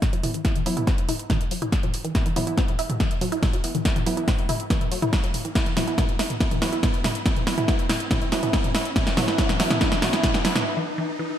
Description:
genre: driving peak-time techno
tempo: 141 BPM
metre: 4/4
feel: straight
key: unclear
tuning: A4 = 439 Hz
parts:
  - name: electronic kick drum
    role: drums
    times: 0.0-10.3 s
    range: none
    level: -24 LUFS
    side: equal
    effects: none
  - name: techno drum kit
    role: drums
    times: 0.0-10.6 s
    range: hi-hat, snare drum, toms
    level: -25 LUFS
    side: equal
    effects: sidechain pumping on hats, sidechain pumping on toms, gated reverb
  - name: riser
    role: sound effects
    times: 2.8-11.4 s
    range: none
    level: -36 LUFS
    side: left 1 dB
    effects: none
  - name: resonant blip pluck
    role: riff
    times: 0.1-11.2 s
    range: E3 to E4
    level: -30 LUFS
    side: left 1 dB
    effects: chorus, phaser, sidechain pumping, ping-pong delay
  - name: filtered dub chord stab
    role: stabs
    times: 0.2-10.6 s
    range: E3 to E4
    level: -29 LUFS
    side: right 2 dB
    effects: chorus, sidechain pumping, ping-pong delay
room: moderate plate reverb, RT60 1.8 s, digital ambience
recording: bright 1980s-style digital production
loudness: -21 LUFS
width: side -10 dB against mid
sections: 0.0-11.4 A section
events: build-up 0.0-11.4; drum fill 0.0-10.7; filter sweep on synth arpeggio sound 0.0-11.4; break 10.7-11.4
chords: 0.0 E5

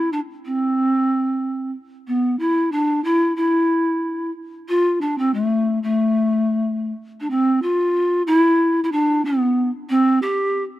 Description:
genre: andean folk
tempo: 92 BPM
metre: 2/4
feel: straight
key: A minor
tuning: A4 = 442 Hz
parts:
  - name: breathy large pan pipes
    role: solo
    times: 0.0-10.6 s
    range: A3 to G4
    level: -17 LUFS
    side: equal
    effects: none
room: light reverb, small room reverb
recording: dry, close 1970s-style studio recording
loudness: -17 LUFS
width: side -15 dB against mid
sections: 0.0-7.3 A section; 7.3-10.8 B section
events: none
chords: none

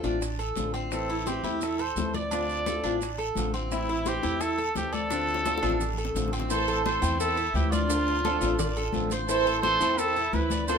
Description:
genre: latin, Cuban son and guajira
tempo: 172 BPM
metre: 4/4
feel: straight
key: A minor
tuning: A4 = 438 Hz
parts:
  - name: nylon-string guitar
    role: accompaniment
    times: 0.0-10.8 s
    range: D3 to F4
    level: -32 LUFS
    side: left 4 dB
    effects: none
  - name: Cuban tres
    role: arpeggios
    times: 0.0-10.8 s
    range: C4 to D5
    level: -31 LUFS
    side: right 4 dB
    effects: none
  - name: upright bass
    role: bass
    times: 0.0-10.8 s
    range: A1 to E2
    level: -33 LUFS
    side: right 1 dB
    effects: none
  - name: guiro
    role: percussion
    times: 0.0-10.8 s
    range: none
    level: -43 LUFS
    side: left 5 dB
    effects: none
  - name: maracas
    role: percussion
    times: 0.0-10.8 s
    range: none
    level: -40 LUFS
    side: right 7 dB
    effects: none
  - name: bongos and cowbell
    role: percussion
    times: 0.1-10.8 s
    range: none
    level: -38 LUFS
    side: left 6 dB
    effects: none
  - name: congas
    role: percussion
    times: 0.2-10.8 s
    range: none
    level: -36 LUFS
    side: left 7 dB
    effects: none
  - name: warm trumpet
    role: melody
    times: 0.9-10.8 s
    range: E4 to D5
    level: -29 LUFS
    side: right 1 dB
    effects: none
  - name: rich studio violin section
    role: second line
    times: 6.5-10.8 s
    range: D4 to A4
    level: -34 LUFS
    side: right 1 dB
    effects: none
room: moderate studio reverb, RT60 0.6 s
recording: minimal, uncompressed stereo recording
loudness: -25 LUFS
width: side -6 dB against mid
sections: 0.0-6.5 A section; 6.5-10.8 B section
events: drum fill 5.1-6.5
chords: 0.0 Dm7; 0.9 Am; 2.3 Dm7; 3.7 Am; 5.1 Dm7; 6.5 Am; 7.9 Dm7; 9.3 Am

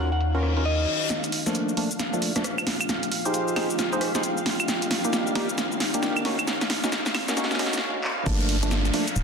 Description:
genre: UK garage, two-step garage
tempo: 134 BPM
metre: 4/4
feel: swing 62% on 16ths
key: G phrygian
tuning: A4 = 440 Hz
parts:
  - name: soft synth bell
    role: melody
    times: 0.0-1.0 s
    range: Eb5 to Gb5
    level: -31 LUFS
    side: equal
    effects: chorus, vintage 12-bit sampler grit, tape echo
  - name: soft string machine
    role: sustained chords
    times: 0.0-9.2 s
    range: F5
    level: -36 LUFS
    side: equal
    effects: phaser, ensemble chorus, sidechain pumping
  - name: percussive organ stab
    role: stabs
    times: 0.0-9.1 s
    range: F3 to C5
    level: -28 LUFS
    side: equal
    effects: analog chorus, tape echo
  - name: organ-like FM bass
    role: bass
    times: 0.0-0.9, 8.3-9.2 s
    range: D1 to Eb2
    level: -24 LUFS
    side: equal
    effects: tube saturation
  - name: deep dark ambient pad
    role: texture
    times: 0.0-9.2 s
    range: Bb3 to Bb5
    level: -33 LUFS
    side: right 1 dB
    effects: chorus, built-in reverb, sidechain pumping
  - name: punchy analog drum machine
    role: drums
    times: 0.1-9.2 s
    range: cabasa, claves, handclaps, hi-hat, rim click, snare drum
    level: -26 LUFS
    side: equal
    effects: low-pass filter on hats, low-pass filter on snare, low-pass filter on perc, low-pass filter on room
  - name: reverse cymbal, riser and downlifter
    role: sound effects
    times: 0.4-9.2 s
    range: none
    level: -34 LUFS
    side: left 2 dB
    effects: none
  - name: electronic kick drum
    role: drums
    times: 8.3-8.4 s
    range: none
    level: -27 LUFS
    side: equal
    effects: overdrive
room: moderate lush hall reverb, RT60 1.6 s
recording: dense, heavily limited modern master, high-pass filter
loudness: -22 LUFS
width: side -5 dB against mid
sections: 0.0-1.1 A section; 1.1-8.3 B section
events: reverse cymbal 0.4-1.1; build-up 1.1-8.3; drum fill 1.1-7.8, 8.0; filter sweep on synth stab 1.1-8.3; break 7.8-8.3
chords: 0.0 Ebm9; 1.1 Gm9; 2.7 Fm9; 4.5 Cm9; 6.2 Ebm9; 8.3 Gm9

